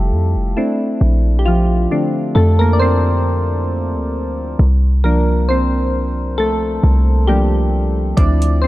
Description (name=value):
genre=contemporary R&B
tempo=67 BPM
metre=4/4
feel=swing 54% on 16ths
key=unclear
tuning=A4 = 439 Hz
part: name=soft electric-piano-like synth keys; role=accompaniment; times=0.0-8.7 s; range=D3 to D5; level=-17 LUFS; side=equal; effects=chorus
part: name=warm 808-style bass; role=bass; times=0.0-8.7 s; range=F1 to F2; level=-15 LUFS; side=equal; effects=none
part: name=smooth R&B drum kit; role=drums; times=8.2-8.6 s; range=hi-hat, kick drum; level=-16 LUFS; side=equal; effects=none
room=little or no reverb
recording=dark, warm production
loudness=-13 LUFS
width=side -17 dB against mid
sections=0.0-8.7 A section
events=synth keys solo 0.0-8.7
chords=0.0 Fmaj7; 0.6 Bbmaj9#11; 4.6 C9sus4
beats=0.12 | 1.01 1.91 2.80 3.70 | 4.59 5.49 6.38 7.28 | 8.18